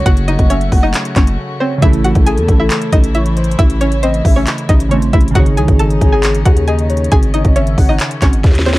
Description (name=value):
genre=hip hop, trap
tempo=136 BPM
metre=4/4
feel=half-time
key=unclear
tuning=A4 = 441 Hz
part: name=string-like resonator pluck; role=melody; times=0.0-8.8 s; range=B#3 to A5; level=-19 LUFS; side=equal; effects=chorus, low-pass filter, tape echo
part: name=warm velvety synth lead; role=second line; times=0.0-8.8 s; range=G#4 to F#5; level=-22 LUFS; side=left 2 dB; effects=chorus, tape echo
part: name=glassy digital keys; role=accompaniment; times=0.0-8.8 s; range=C#3 to C#5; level=-22 LUFS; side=right 2 dB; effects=chorus, low-pass filter
part: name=warm studio string section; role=sustained chords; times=0.0-8.8 s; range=C#3 to F#4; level=-23 LUFS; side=left 1 dB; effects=none
part: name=growling 808-style bass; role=bass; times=0.0-8.8 s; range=F#1 to E2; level=-15 LUFS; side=equal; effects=none
part: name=trap drum kit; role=drums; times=0.1-8.8 s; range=handclaps, hi-hat, kick drum, snare drum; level=-12 LUFS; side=equal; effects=none
room=little or no reverb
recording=dark, warm production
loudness=-10 LUFS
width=side -18 dB against mid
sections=0.0-8.8 A section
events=break 1.4-1.8; drum fill 8.4-8.8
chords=0.0 F#m; 1.8 A; 5.4 G#sus4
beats=| 0.06 0.50 0.94 1.38 | 1.82 2.26 2.71 3.15 | 3.59 4.03 4.47 4.91 | 5.35 5.79 6.24 6.68 | 7.12 7.56 8.00 8.44